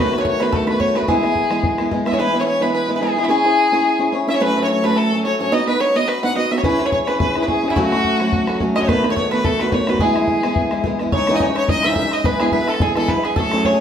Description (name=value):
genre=celtic folk, Celtic reel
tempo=214 BPM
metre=4/4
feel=swing 55% on 8ths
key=E major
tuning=A4 = 440 Hz
part: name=clear fiddle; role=melody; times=0.0-13.8 s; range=E4 to F#5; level=-20 LUFS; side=left 2 dB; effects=none
part: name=bluegrass banjo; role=second line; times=0.0-13.8 s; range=E4 to F#5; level=-24 LUFS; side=right 3 dB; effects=slapback echo
part: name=picked swing-style acoustic guitar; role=accompaniment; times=0.0-13.8 s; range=B2 to C#5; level=-19 LUFS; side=equal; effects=none
part: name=bodhran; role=percussion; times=0.1-2.2, 6.6-13.7 s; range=none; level=-24 LUFS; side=left 1 dB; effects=none
room=wet studio reverb, RT60 0.7 s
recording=heard from further back in the room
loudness=-15 LUFS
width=side -8 dB against mid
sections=0.0-2.2 A section; 2.2-11.1 A section; 11.1-13.8 B section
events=none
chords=0.0 B7; 1.1 E; 3.3 C#m; 4.4 F#m; 5.5 B; 6.6 C#m; 7.8 F#m/C#; 8.9 B7; 10.0 E; 11.1 C#madd9; 12.2 E